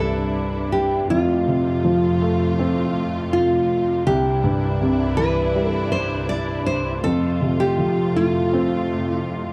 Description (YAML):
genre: pop ballad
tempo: 81 BPM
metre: 4/4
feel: straight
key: unclear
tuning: A4 = 441 Hz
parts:
  - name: nylon-string guitar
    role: melody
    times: 0.0-9.5 s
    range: F4 to D5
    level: -25 LUFS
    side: equal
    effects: none
  - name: warm grand piano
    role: accompaniment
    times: 0.0-9.5 s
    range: C2 to C4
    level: -24 LUFS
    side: equal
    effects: none
  - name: warm studio string section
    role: sustained chords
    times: 0.0-9.5 s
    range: C2 to F4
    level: -28 LUFS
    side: equal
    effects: none
room: light reverb, studio ambience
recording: dark, warm production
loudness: -21 LUFS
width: mono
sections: 0.0-9.5 A section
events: none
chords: 0.0 Cadd9; 1.1 F; 4.1 Cadd9; 7.0 F